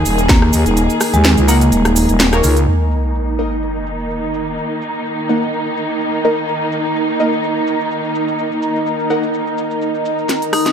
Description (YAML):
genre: bass house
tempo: 126 BPM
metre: 4/4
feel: swing 55% on 16ths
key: unclear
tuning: A4 = 441 Hz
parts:
  - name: muted studio string section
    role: sustained chords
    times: 0.0-10.7 s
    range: Eb3 to Ab4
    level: -22 LUFS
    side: left 1 dB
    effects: sidechain pumping, low-pass filter
  - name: growling FM bass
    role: bass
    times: 0.0-2.7 s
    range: Eb1 to Eb2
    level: -15 LUFS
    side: equal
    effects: sidechain pumping
  - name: warbly tape-like pad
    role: texture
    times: 0.0-10.7 s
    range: Eb4 to Bb5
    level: -20 LUFS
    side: right 2 dB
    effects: chorus, built-in reverb, sidechain pumping
  - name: house drum kit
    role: drums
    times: 0.1-10.7 s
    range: hi-hat, rim click, shaker, snare drum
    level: -17 LUFS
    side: equal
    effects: low-pass filter on hats, small room reverb, low-pass filter on perc, low-pass filter on snare
  - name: marimba with medium hard mallets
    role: melody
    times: 0.3-2.0, 10.5-10.7 s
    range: Ab3 to Eb4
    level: -18 LUFS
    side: left 1 dB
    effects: dub echo
  - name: band-passed chord stab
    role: stabs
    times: 1.5-9.3 s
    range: Bb3 to Gb5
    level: -20 LUFS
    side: left 1 dB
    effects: lush chorus, sidechain pumping, dub echo
  - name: sub drop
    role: sound effects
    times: 2.7-4.6 s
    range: none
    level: -20 LUFS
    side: equal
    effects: none
room: moderate lush hall reverb, RT60 1.9 s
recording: none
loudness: -14 LUFS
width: side -8 dB against mid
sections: 0.0-2.7 A section; 2.7-10.3 B section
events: impact 2.7-4.6; filter sweep on synth stab 2.7-10.3; filter sweep on string section 2.7-10.3; drum fill 10.3-10.7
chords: 0.0 Eb5